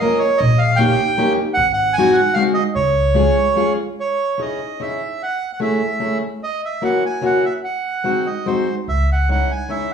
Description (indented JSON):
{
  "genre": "musette waltz",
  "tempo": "148 BPM",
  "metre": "3/4",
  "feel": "straight",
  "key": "Db major, C# harmonic minor from 4.0 s",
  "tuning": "A4 = 440 Hz",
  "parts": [
    { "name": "accordion", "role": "melody", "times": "0.0-9.9 s", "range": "B#4 to Ab5", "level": "-19 LUFS", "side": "right 3 dB", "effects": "none" },
    { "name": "fingerpicked plugged-in steel-string acoustic guitar", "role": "accompaniment", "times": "0.0-9.9 s", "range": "Ab3 to Bb4", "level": "-19 LUFS", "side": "left 2 dB", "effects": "none" },
    { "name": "upright bass", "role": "bass", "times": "0.4-3.3, 8.9-9.4 s", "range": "Ab1 to Db2", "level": "-19 LUFS", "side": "equal", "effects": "none" }
  ],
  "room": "wet large studio reverb, RT60 0.9 s",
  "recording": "band playing live in one room, small room ambience",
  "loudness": "-16 LUFS",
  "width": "side -7 dB against mid",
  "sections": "0.0-4.0 A section; 4.0-9.9 B section",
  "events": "none",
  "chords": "0.4 Eb7/Bb; 1.6 Ab7; 2.8 Db; 4.0 C#madd9; 5.2 Amaj7; 6.4 F#7; 7.6 G#7; 8.9 C#madd9",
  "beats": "0.01 | 0.41 0.80 1.19 | 1.58 1.98 2.37 | 2.76 3.16 3.56 | 3.98 4.39 4.79 | 5.20 5.60 6.01 | 6.41 6.82 7.22 | 7.63 8.04 8.46 | 8.88 9.29 9.70"
}